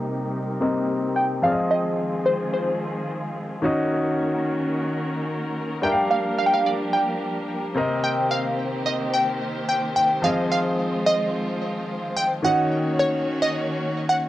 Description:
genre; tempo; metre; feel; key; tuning
amapiano; 109 BPM; 4/4; swing 55% on 16ths; unclear; A4 = 440 Hz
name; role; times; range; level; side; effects
clear concert grand piano; accompaniment; 0.0-14.3 s; C3 to F5; -25 LUFS; left 1 dB; low-pass filter
warm studio string section; sustained chords; 0.0-14.3 s; C3 to Db5; -29 LUFS; right 1 dB; low-pass filter
glassy wavetable pluck; melody; 1.2-14.3 s; C5 to G5; -22 LUFS; equal; chorus, low-pass filter, cassette tape, analog delay
room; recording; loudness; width
light reverb; home recording on cassette; -21 LUFS; side -14 dB against mid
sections
0.0-14.3 A section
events
filter sweep 0.0-14.3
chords
0.0 Cm7; 1.4 Fm7; 3.6 Ebm7; 5.8 Gm7; 7.8 Cm7; 10.2 Fm7; 12.4 Ebm7

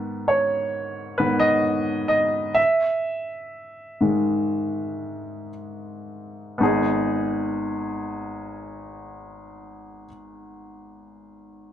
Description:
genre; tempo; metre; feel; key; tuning
pop; 55-68 BPM; 4/4; straight; G# minor; A4 = 440 Hz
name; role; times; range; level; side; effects
clear baby grand piano; accompaniment; 0.0-11.7 s; G#1 to E5; -22 LUFS; equal; none
room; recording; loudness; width
moderate studio ambience, RT60 0.5 s; band playing live in one room; -20 LUFS; side -10 dB against mid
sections
0.0-6.6 A section; 6.6-10.9 B section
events
slowing down 0.0-6.6; grand piano solo 0.0-6.6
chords
0.0 G#m; 2.6 Emaj7; 6.6 G#m

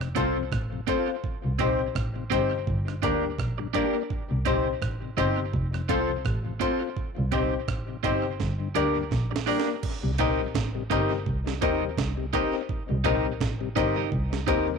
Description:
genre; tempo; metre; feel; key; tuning
roots reggae; 84 BPM; 4/4; swing 57% on 16ths; C dorian; A4 = 440 Hz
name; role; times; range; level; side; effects
mellow tonewheel organ; accompaniment; 0.0-14.8 s; F2 to F4; -36 LUFS; left 12 dB; slow rotary speaker, tape echo
dark double bass; bass; 0.0-14.7 s; F1 to Eb2; -29 LUFS; equal; none
breakbeat sampler-style drum kit; drums; 0.0-14.7 s; crash cymbal, hi-hat, kick drum, rim click, snare drum; -32 LUFS; right 3 dB; tape echo
electric guitar at the edge of break-up; accompaniment; 0.2-14.7 s; C4 to Eb5; -30 LUFS; right 14 dB; harmonic tremolo, tape echo
bright upright piano; stabs; 0.2-14.7 s; Bb3 to C5; -29 LUFS; left 14 dB; none
room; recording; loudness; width
moderate spring reverb, RT60 1.7 s, digital ambience; 1960s-style stereo with parts hard left and right; -24 LUFS; side -5 dB against mid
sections
0.0-9.8 A section; 9.8-14.8 B section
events
drum fill 8.4-9.8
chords
0.0 F; 1.2 Cm; 2.7 Gm; 4.1 Cm; 5.5 F; 7.0 Cm; 8.4 Gm; 9.8 Cm7

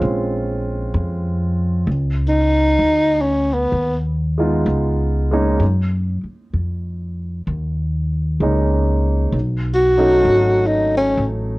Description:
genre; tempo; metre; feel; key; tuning
jazz ballad; 64 BPM; 4/4; swing 68% on 8ths; Db major; A4 = 438 Hz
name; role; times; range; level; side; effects
warm concert grand piano; accompaniment; 0.0-11.6 s; Gb3 to F4; -21 LUFS; right 1 dB; none
upright bass; bass; 0.0-11.6 s; Ab1 to Gb2; -19 LUFS; equal; none
breathy tenor saxophone; melody; 2.3-4.0, 9.7-11.3 s; Cb4 to Gb4; -15 LUFS; equal; none
room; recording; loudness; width
light reverb; worn, warbling old tape, cassette tape, warbly pitch drift; -16 LUFS; side -21 dB against mid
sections
0.0-11.6 A section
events
tenor saxophone solo 0.0-11.6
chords
0.0 Bbm9; 1.9 Db9; 5.6 Gb69; 9.3 Cb9

